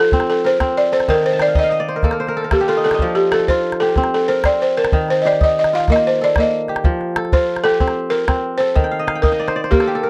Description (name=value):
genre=west african traditional, West African string and xylophone music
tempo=125 BPM (dotted quarters)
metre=12/8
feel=straight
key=F mixolydian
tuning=A4 = 440 Hz
part: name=balafon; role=melody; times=0.0-10.1 s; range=G4 to F5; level=-19 LUFS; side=equal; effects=none
part: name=kora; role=arpeggios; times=0.0-10.1 s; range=Eb3 to A5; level=-23 LUFS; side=equal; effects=none
part: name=calabash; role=percussion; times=0.0-10.1 s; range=none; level=-20 LUFS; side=equal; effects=none
room=little or no reverb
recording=dry, close 1970s-style studio recording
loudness=-17 LUFS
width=mono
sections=0.0-10.1 A section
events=kora fill 1.3-3.0, 8.8-10.1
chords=0.0 F; 1.1 Eb5; 3.0 F; 4.9 Eb; 6.8 F; 8.8 Eb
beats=0.12 0.60 | 1.08 1.56 2.04 2.52 | 3.00 3.48 3.96 4.44 | 4.92 5.40 5.88 6.36 | 6.84 7.32 7.80 8.28 | 8.76 9.24 9.72